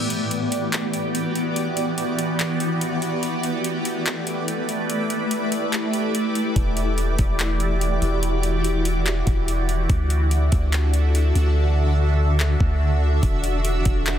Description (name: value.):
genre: hip hop, atmospheric cloud-rap.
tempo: 144 BPM.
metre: 4/4.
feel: half-time.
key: E minor.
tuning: A4 = 436 Hz.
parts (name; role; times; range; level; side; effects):
shimmering ambient pad; sustained chords; 0.0-14.2 s; D3 to E5; -23 LUFS; equal; chorus, built-in reverb, phaser, sidechain pumping.
smooth R&B drum kit; drums; 0.1-14.2 s; handclaps, hi-hat, kick drum; -25 LUFS; equal; none.
long sustained 808-style bass; bass; 6.6-14.2 s; E1 to D2; -20 LUFS; equal; none.
room: digital ambience.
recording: dense, heavily limited modern master.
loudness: -19 LUFS.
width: side -10 dB against mid.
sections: 0.0-14.2 A section.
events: break 0.0-6.6; hi-hats muted 11.6-13.2.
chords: 0.0 Em7; 3.2 A7sus4; 6.6 Em7; 9.9 Dadd9; 13.2 Em7.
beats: 0.31 0.73 1.15 | 1.56 1.98 2.40 2.81 | 3.23 3.65 4.06 4.48 | 4.90 5.31 5.73 6.15 | 6.56 6.98 7.40 7.81 | 8.23 8.65 9.06 9.48 | 9.90 10.31 10.73 11.15 | 11.56 11.98 12.40 12.81 | 13.23 13.65 14.06.